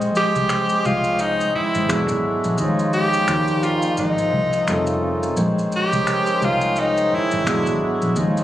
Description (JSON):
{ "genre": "R&B, neo-soul", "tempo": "86 BPM", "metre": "4/4", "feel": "swing 59% on 16ths", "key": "Bb dorian", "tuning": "A4 = 439 Hz", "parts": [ { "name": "mellow tine electric piano", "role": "accompaniment", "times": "0.0-8.4 s", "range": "F3 to Eb5", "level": "-24 LUFS", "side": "equal", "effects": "medium stereo tremolo" }, { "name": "hand-pumped harmonium", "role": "sustained chords", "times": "0.0-8.4 s", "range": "C3 to Eb5", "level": "-25 LUFS", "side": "equal", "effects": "none" }, { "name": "vintage muted fingered electric bass", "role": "bass", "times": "0.0-8.4 s", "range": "E1 to Eb2", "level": "-25 LUFS", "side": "left 1 dB", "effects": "none" }, { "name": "maracas and finger snaps", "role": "percussion", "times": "0.0-8.4 s", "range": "none", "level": "-29 LUFS", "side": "left 1 dB", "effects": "none" }, { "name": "edgy tenor saxophone", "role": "melody", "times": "0.2-7.8 s", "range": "Eb4 to G4", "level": "-21 LUFS", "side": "equal", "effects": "tape echo" } ], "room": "light reverb, small room ambience", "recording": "recorded on a phone in the room, club reverb, compression", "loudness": "-17 LUFS", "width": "side -13 dB against mid", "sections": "0.0-8.4 A section", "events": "none", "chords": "0.0 Bbm11; 1.9 E9; 2.6 Eb9sus4; 3.3 Eb9; 4.0 Ab6; 4.7 F7b13; 5.4 Bbm11; 7.5 E9", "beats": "0.49 1.19 1.89 | 2.58 3.28 3.98 4.68 | 5.37 6.07 6.77 7.47 | 8.16" }